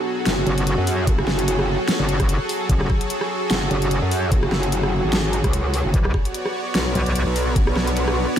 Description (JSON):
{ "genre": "heavy wobble dubstep", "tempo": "148 BPM", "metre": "4/4", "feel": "swing 55% on 16ths, half-time", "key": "F# minor", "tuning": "A4 = 440 Hz", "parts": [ { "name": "supersaw pad", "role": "sustained chords", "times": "0.0-8.4 s", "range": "F#3 to D5", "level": "-25 LUFS", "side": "right 1 dB", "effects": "lush chorus, sidechain pumping" }, { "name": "deep dark ambient pad", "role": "texture", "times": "0.0-8.4 s", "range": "B3 to C#5", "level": "-29 LUFS", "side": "right 1 dB", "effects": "chorus, built-in reverb, sidechain pumping" }, { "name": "metallic wobble bass", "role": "bass", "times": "0.3-8.3 s", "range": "F#1 to F#2", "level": "-22 LUFS", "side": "equal", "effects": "chorus, overdrive" }, { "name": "dubstep drum kit", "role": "drums", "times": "0.3-8.4 s", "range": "hi-hat, rim click, snare drum", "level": "-26 LUFS", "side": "equal", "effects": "overdrive, small room ambience" }, { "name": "metallic wobble bass", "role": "bass", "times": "0.5-7.2 s", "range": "F#1 to B1", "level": "-21 LUFS", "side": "equal", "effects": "chorus, overdrive" }, { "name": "electronic kick drum", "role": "drums", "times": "1.1-7.6 s", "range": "none", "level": "-20 LUFS", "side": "equal", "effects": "overdrive, small room ambience" } ], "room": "light reverb", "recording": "none", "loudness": "-18 LUFS", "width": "side -10 dB against mid", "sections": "0.0-8.4 A section", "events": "none", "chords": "0.0 F#madd9; 5.9 Bmadd9", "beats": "0.26 0.67 | 1.07 1.48 1.88 2.29 | 2.69 3.10 3.51 3.91 | 4.32 4.72 5.13 5.53 | 5.94 6.34 6.75 7.16 | 7.56 7.96 8.37" }